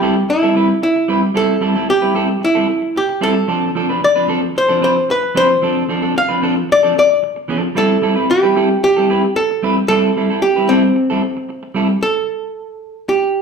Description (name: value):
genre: disco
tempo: 113 BPM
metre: 4/4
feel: straight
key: unclear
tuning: A4 = 440 Hz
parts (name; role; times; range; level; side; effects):
- archtop guitar, miked and amplified; melody; 0.0-13.4 s; C4 to F5; -15 LUFS; equal; none
- clean electric guitar; accompaniment; 0.0-12.0 s; F3 to B4; -17 LUFS; right 1 dB; none
room: wet large studio reverb, RT60 0.8 s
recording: band playing live in one room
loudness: -13 LUFS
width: side -6 dB against mid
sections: 0.0-12.0 A section; 12.0-13.4 B section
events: none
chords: 0.0 Am7; 3.5 Dm7; 7.7 Am7; 12.0 N.C.